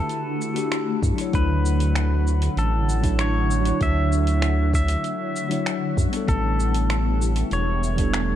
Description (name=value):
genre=sunset chillout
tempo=97 BPM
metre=4/4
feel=straight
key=D major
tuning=A4 = 441 Hz
part: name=pedal steel guitar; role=melody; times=0.0-8.4 s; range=A4 to E5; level=-29 LUFS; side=left 2 dB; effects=dub echo
part: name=bell-like tine electric piano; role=accompaniment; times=0.0-8.4 s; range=F#3 to C#5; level=-27 LUFS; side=moving between left 8 dB and right 7 dB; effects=auto-pan, analog delay
part: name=shimmering ambient pad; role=sustained chords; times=0.0-8.4 s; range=D3 to F#5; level=-29 LUFS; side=equal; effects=chorus, built-in reverb, phaser
part: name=smooth R&B drum kit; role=drums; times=0.1-8.3 s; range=finger snaps, hi-hat, shaker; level=-31 LUFS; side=right 1 dB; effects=overdrive, analog delay
part: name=round analog bass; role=bass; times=1.0-8.4 s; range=E1 to G2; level=-22 LUFS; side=equal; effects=none
part: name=electronic kick drum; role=drums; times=1.0-8.1 s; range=none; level=-24 LUFS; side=equal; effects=overdrive
room=light reverb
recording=echo-heavy mix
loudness=-20 LUFS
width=side -11 dB against mid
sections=0.0-8.4 A section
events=none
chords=0.0 Em11; 1.3 Dmaj9; 6.3 A9sus4